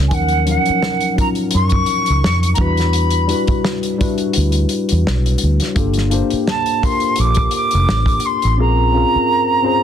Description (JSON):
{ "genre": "R&B, neo-soul", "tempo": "85 BPM", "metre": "4/4", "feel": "swing 57% on 16ths", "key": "unclear", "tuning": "A4 = 440 Hz", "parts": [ { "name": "tine electric piano", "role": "accompaniment", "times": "0.0-9.8 s", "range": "E#3 to B#5", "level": "-20 LUFS", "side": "left 3 dB", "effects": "lush chorus" }, { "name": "vintage muted fingered electric bass", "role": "bass", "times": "0.0-9.2 s", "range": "F1 to F#2", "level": "-16 LUFS", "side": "equal", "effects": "none" }, { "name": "concert flute", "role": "melody", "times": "0.1-9.8 s", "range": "F#5 to D6", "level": "-18 LUFS", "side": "right 2 dB", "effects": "slapback echo" }, { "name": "warm soul drum kit", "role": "drums", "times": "0.1-8.6 s", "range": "hi-hat, kick drum, snare drum", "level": "-20 LUFS", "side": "equal", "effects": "none" } ], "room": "studio reverb", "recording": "dense, heavily limited modern master", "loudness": "-14 LUFS", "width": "side -9 dB against mid", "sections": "0.0-9.8 A section", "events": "kick muted 4.3-5.8; tine electric piano fill 9.3-9.8", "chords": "0.1 D#m9; 2.6 Em9; 5.8 Gm9; 8.6 A#m9" }